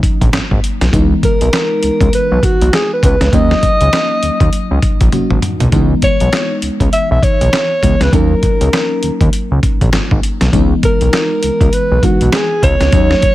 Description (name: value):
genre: R&B, new jack swing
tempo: 100 BPM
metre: 4/4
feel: swing 60% on 16ths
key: C# dorian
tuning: A4 = 438 Hz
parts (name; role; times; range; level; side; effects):
- FM electric piano with soft pad layer; accompaniment; 0.0-13.3 s; E3 to F#4; -18 LUFS; left 1 dB; chorus
- dusty soul sampler-style drum kit; drums; 0.0-13.3 s; handclaps, hi-hat, kick drum, snare drum, toms; -14 LUFS; equal; none
- fat analog bass; bass; 0.2-13.1 s; G#1 to D#2; -13 LUFS; equal; none
- breathy alto saxophone; melody; 1.2-13.3 s; F#4 to E5; -15 LUFS; equal; ping-pong delay
room: little or no reverb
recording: none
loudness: -10 LUFS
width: side -15 dB against mid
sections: 0.0-13.3 A section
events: drum fill 5.1-5.7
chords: 0.0 D#m7; 0.9 C#m7; 3.3 D#m7; 5.7 C#m7; 8.1 D#m7; 10.5 C#m7